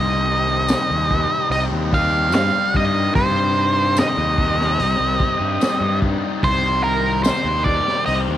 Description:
psychedelic rock; 73 BPM; 4/4; straight; C minor; A4 = 439 Hz
octave-fuzz lead guitar; melody; 0.0-8.2 s; Bb4 to F5; -19 LUFS; right 2 dB; distortion, tape echo
tonewheel organ; sustained chords; 0.0-8.4 s; G3 to G4; -32 LUFS; right 13 dB; overdrive, wide subtle chorus
fuzz guitar; riff; 0.0-8.4 s; C3 to G4; -25 LUFS; left 11 dB; distortion, phaser
fuzz fingered electric bass; bass; 0.0-8.4 s; C2 to G2; -22 LUFS; equal; overdrive, transformer saturation
crunchy breakbeat drum kit; drums; 0.7-8.3 s; hi-hat, kick drum, snare drum; -23 LUFS; equal
tambourine; percussion; 0.7-7.4 s; -34 LUFS; left 16 dB
little or no reverb; 1960s-style stereo with parts hard left and right; -16 LUFS; side -11 dB against mid
0.0-8.4 A section
0.0 Cm
0.69 1.51 2.33 | 3.15 3.96 4.79 5.61 | 6.43 7.25 8.07

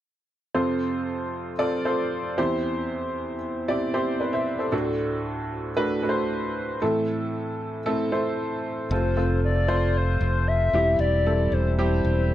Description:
pop; 115 BPM; 4/4; straight; A4 = 440 Hz
clear upright piano; accompaniment; 0.5-12.3 s; D2 to E5; -24 LUFS; right 1 dB; plate reverb
hollow clarinet-like synth lead; melody; 8.9-12.3 s; C5 to E5; -25 LUFS; left 3 dB; chorus, plate reverb
modern bright fingered electric bass; bass; 8.9-12.3 s; E1 to F1; -23 LUFS; equal
moderate studio ambience, RT60 0.5 s; -22 LUFS; side -12 dB against mid
0.5-8.9 A section; 8.9-12.3 B section
0.5 F; 2.4 C/E; 4.7 D; 6.8 Am; 8.9 F; 10.7 C/E
| 0.55 1.07 1.59 2.12 | 2.64 3.16 3.68 4.21 | 4.73 5.25 5.77 6.29 | 6.82 7.34 7.86 8.38 | 8.90 9.43 9.95 10.47 | 10.99 11.52 12.04

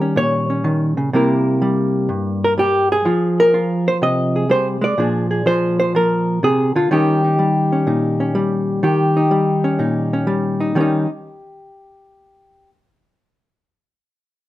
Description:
solo jazz; 124 BPM; 4/4; swing 68% on 8ths; Eb mixolydian; A4 = 440 Hz
hollow-body jazz guitar; solo; 0.0-12.7 s; G2 to Eb5; -15 LUFS; equal
moderate large studio reverb, RT60 1.0 s; minimal, uncompressed stereo recording; -15 LUFS; side -15 dB against mid
0.0-10.8 A section; 10.8-12.7 B section
0.0 Eb7; 1.1 C7; 3.0 Fm7; 5.0 Bb7; 6.9 Eb7
0.16 0.64 | 1.12 1.60 2.08 2.56 | 3.05 3.53 4.01 4.49 | 4.97 5.46 5.94 6.42 | 6.90 7.38 7.87 8.35 | 8.83 9.31 9.79 10.28 | 10.76 11.24 11.72 12.21

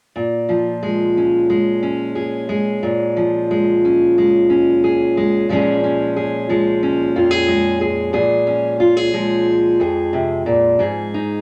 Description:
folk; 90 BPM; 4/4; straight; Bb minor; A4 = 440 Hz
fingerpicked steel-string acoustic guitar; accompaniment; 0.2-11.4 s; F2 to Ab4; -17 LUFS; equal
wet studio reverb, RT60 0.7 s; -17 LUFS; mono
0.2-5.5 A section; 5.5-11.4 B section
0.2 Bbm7; 10.8 Fm7/Ab
| 0.16 0.83 1.49 2.16 | 2.83 3.49 4.16 4.82 | 5.49 6.15 6.82 7.48 | 8.14 8.80 9.47 10.13 | 10.79

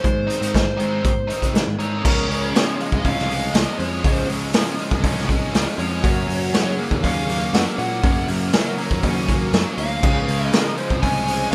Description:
indie rock; 120 BPM; 4/4; straight; Db major; A4 = 440 Hz
dark smooth lead guitar; melody; 0.0-11.5 s; C5 to Ab5; -29 LUFS; equal; overdrive, plate reverb
clean electric guitar; riff; 0.0-11.5 s; Gb2 to Db4; -30 LUFS; equal; spring reverb
overdriven electric guitar; riff; 0.0-11.5 s; Gb2 to Eb4; -29 LUFS; equal; analog chorus
picked electric bass; bass; 0.0-11.5 s; C2 to C3; -28 LUFS; equal
raw garage drum kit; drums; 0.0-11.5 s; crash cymbal, hi-hat, kick drum, snare drum; -23 LUFS; equal
soft string machine; sustained chords; 4.8-11.5 s; barely audible
barky tine electric piano; second line; 2.1-11.5 s; F4 to C5; -35 LUFS; equal; ensemble chorus, plate reverb
moderate small room ambience, RT60 0.5 s; rough home demo mix; -20 LUFS; mono
0.0-2.0 A section; 2.0-11.5 B section
0.0 Ab; 2.0 Db; 6.0 Gb; 10.0 Db
| 0.04 0.54 1.04 1.54 | 2.04 2.54 3.04 3.54 | 4.04 4.54 5.04 5.54 | 6.04 6.54 7.04 7.54 | 8.03 8.53 9.03 9.53 | 10.03 10.53 11.03 11.52

